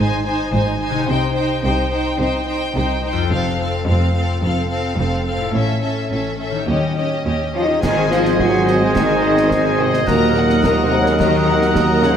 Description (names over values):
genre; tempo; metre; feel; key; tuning
cinematic, heroic adventure film score; 107 BPM; 4/4; straight; Ab mixolydian from 7.8 s; A4 = 440 Hz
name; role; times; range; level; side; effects
clear chamber violin section; melody; 0.0-12.2 s; Eb5 to Bb5; -25 LUFS; left 3 dB; none
warm symphonic violin section; second line; 0.0-12.2 s; G4 to Gb5; -27 LUFS; left 1 dB; none
rich symphonic viola section; accompaniment; 0.0-12.2 s; C4 to C5; -25 LUFS; right 1 dB; none
concert harp; arpeggios; 0.0-12.2 s; F2 to C6; -25 LUFS; left 7 dB; none
rich studio double bass section; bass; 0.0-12.2 s; F1 to Eb2; -24 LUFS; right 2 dB; none
rich symphonic cello section; bass; 0.0-12.2 s; Eb2 to Ab3; -23 LUFS; right 2 dB; none
timpani; percussion; 6.7-7.5 s; Eb3; -27 LUFS; left 2 dB; none
dark French horn section; sustained chords; 7.5-12.2 s; Bb3 to Ab4; -21 LUFS; left 2 dB; none
silver concert flute; second line; 7.6-12.2 s; Bb4 to Ab5; -24 LUFS; equal; none
bright clarinet; second line; 7.8-12.2 s; Bb4 to C5; -27 LUFS; left 2 dB; none
warm oboe; second line; 7.8-12.2 s; Gb5 to Ab5; -26 LUFS; right 2 dB; none
warm trombone section; sustained chords; 7.8-12.2 s; Eb3 to C4; -24 LUFS; right 3 dB; none
clear trumpet; stabs; 7.8-12.2 s; Eb5; -24 LUFS; right 1 dB; none
warm tuba; bass; 7.8-12.2 s; Ab1 to Eb2; -22 LUFS; right 4 dB; none
concert snare drum, clash cymbals and concert bass drum; drums; 7.8-12.2 s; none; -25 LUFS; equal; none
room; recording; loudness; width
wet scoring stage reverb, RT60 1.8 s; none; -15 LUFS; side -8 dB against mid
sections
0.0-7.8 A section; 7.8-12.2 B section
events
build-up 0.0-7.8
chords
0.0 Ab; 1.1 Cm; 3.3 F; 5.5 A; 6.7 Eb7; 7.8 Ab; 10.1 Ebm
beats
0.54 | 1.09 1.64 2.20 2.76 | 3.32 3.88 4.43 4.99 | 5.55 6.12 6.69 7.26 | 7.84 8.40 8.96 9.52 | 10.08 10.64 11.20 11.75